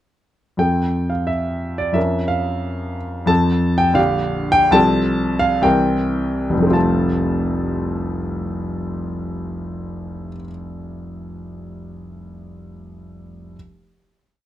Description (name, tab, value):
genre	classical, romantic character piece for solo piano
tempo	51-92 BPM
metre	2/4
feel	rubato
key	F major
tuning	A4 = 440 Hz
part	clear grand piano	solo	0.6-13.6 s	F1 to A5	-18 LUFS	equal	none
room	light reverb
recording	dark, warm production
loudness	-17 LUFS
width	side -12 dB against mid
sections	0.6-6.7 A section; 6.7-11.3 final chord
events	slowing down 2.6-6.7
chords	0.6 F; 2.0 Bbm/F; 3.3 F; 4.0 Gm/Bb; 4.7 F/C; 5.6 C7; 6.7 F